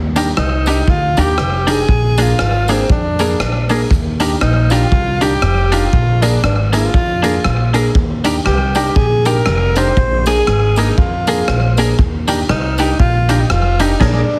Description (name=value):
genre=ska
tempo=119 BPM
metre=4/4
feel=swing 59% on 8ths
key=Eb major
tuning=A4 = 442 Hz
part: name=upright bass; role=bass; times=0.0-14.2 s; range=F1 to F2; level=-18 LUFS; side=equal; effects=none
part: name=twangy electric guitar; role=accompaniment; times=0.2-14.2 s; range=D4 to Bb4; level=-22 LUFS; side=equal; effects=tremolo
part: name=warm upright piano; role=stabs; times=0.2-14.2 s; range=Bb3 to Ab4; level=-23 LUFS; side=equal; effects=slapback echo
part: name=raw garage drum kit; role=drums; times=0.2-14.2 s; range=crash cymbal, hi-hat, kick drum, rim click, snare drum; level=-21 LUFS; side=equal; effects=slapback echo
part: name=tambourine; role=percussion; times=0.2-13.9 s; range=none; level=-35 LUFS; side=equal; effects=none
part: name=breathy tenor saxophone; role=melody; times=0.4-14.4 s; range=C4 to C5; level=-21 LUFS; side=equal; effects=slapback echo
room=light reverb, small room ambience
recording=heavily compressed radio sound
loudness=-14 LUFS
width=mono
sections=0.0-14.4 A section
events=band accent 14.0-14.4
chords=0.0 Ebmaj7; 1.9 Bb7; 3.9 Ebmaj7; 5.9 Bb7; 7.9 Ebmaj7; 10.0 Bb7; 12.0 Ebmaj7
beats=0.37 0.88 1.38 | 1.89 2.39 2.90 3.40 | 3.91 4.41 4.92 5.42 | 5.93 6.43 6.94 7.44 | 7.95 8.45 8.96 9.46 | 9.97 10.47 10.98 11.48 | 11.99 12.49 13.00 13.50 | 14.00